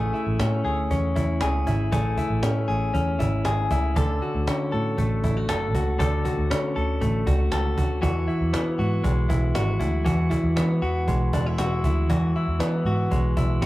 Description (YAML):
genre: jangly indie pop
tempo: 118 BPM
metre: 4/4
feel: straight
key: A major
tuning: A4 = 441 Hz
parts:
  - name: direct-recorded clean electric guitar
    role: arpeggios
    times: 0.0-13.7 s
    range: D3 to A4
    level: -25 LUFS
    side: left 1 dB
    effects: spring reverb
  - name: vintage muted picked electric bass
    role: bass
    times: 0.0-13.7 s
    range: E1 to E3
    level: -25 LUFS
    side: equal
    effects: none
  - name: cajon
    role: drums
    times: 0.1-13.7 s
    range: none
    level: -29 LUFS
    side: right 1 dB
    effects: none
room: moderate small room ambience, RT60 0.5 s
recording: rough rehearsal-room recording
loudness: -21 LUFS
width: side -17 dB against mid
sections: 0.0-13.7 A section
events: none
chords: 0.0 Amaj7; 4.0 Dmaj7; 8.0 Eadd9